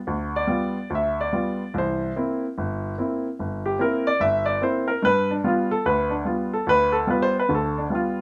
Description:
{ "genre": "solo jazz", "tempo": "146 BPM", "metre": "4/4", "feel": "swing 65% on 8ths, rubato", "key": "G mixolydian", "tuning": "A4 = 440 Hz", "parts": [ { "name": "clear upright piano", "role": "solo", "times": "0.1-8.2 s", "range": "G1 to E5", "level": "-24 LUFS", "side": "equal", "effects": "none" } ], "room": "light reverb", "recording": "none", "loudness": "-24 LUFS", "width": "mono", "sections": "0.0-8.2 A section", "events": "upright piano solo 0.0-8.2", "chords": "0.0 G7; 1.7 C7; 5.0 G7", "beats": "| 0.08 0.49 0.90 1.32 | 1.74 2.15 2.57 2.98 | 3.39 3.80 4.21 4.61 | 5.02 5.43 5.84 6.25 | 6.67 7.08 7.49 7.91" }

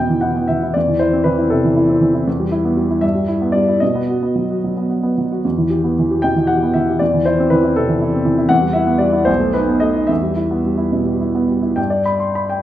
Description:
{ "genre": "classical, romantic character piece for solo piano", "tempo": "67-81 BPM (dotted quarters)", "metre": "6/8", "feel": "rubato", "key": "E minor", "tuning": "A4 = 440 Hz", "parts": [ { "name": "warm grand piano", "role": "solo", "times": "0.0-12.6 s", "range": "B1 to C6", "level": "-14 LUFS", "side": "equal", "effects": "none" } ], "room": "wet recital hall reverb, RT60 1.5 s", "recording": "minimal, uncompressed stereo recording", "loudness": "-14 LUFS", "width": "side -12 dB against mid", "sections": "0.0-11.8 A section", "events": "none", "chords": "0.0 E5; 0.8 Am/E; 2.3 Em; 3.0 Em/G; 3.8 B; 5.4 Em; 7.0 Am/E; 8.5 Em; 9.3 B7; 10.1 Em; 11.8 G", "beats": "| 0.75 1.51 | 2.27 3.03 | 3.82 4.63 | 5.44 6.24 | 7.00 7.76 | 8.50 9.28 | 10.10 10.92 | 11.78" }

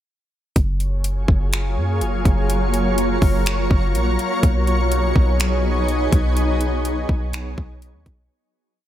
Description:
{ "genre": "hip hop, atmospheric cloud-rap", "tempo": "124 BPM", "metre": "4/4", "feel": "half-time", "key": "F# major", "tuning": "A4 = 441 Hz", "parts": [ { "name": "shimmering ambient pad", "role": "sustained chords", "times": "1.0-8.3 s", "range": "F#3 to C#5", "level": "-22 LUFS", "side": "equal", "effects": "chorus, built-in reverb, sidechain pumping" }, { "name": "warm 808-style bass", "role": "bass", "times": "0.6-8.3 s", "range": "F#1 to F#2", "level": "-21 LUFS", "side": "equal", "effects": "none" }, { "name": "trap drum kit", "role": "drums", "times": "0.6-8.2 s", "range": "finger snaps, hi-hat, kick drum", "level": "-19 LUFS", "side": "equal", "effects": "none" } ], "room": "little or no reverb", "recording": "none", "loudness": "-17 LUFS", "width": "side -12 dB against mid", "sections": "0.6-8.3 verse", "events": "fade-out 6.4-8.3", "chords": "0.6 F#maj9; 4.4 B69", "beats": "| 0.56 1.04 1.53 2.01 | 2.50 2.98 3.46 3.95 | 4.43 4.92 5.40 5.88 | 6.37 6.85 7.33 7.82" }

